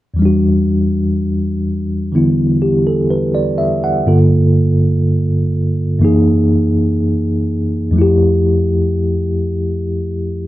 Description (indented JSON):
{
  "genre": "jazz",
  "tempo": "62 BPM",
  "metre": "4/4",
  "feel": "swing 69% on 8ths",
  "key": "E phrygian",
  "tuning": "A4 = 441 Hz",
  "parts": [
    { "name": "tine electric piano", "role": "accompaniment", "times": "0.1-10.5 s", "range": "E2 to F#5", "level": "-12 LUFS", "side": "equal", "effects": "medium tremolo" }
  ],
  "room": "moderate studio reverb, RT60 0.8 s",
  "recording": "dark, warm production",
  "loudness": "-12 LUFS",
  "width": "side -15 dB against mid",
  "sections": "0.2-10.5 A section",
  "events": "none",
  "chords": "0.2 Em9; 4.1 Gm7; 6.0 F#13; 8.0 Fmaj7"
}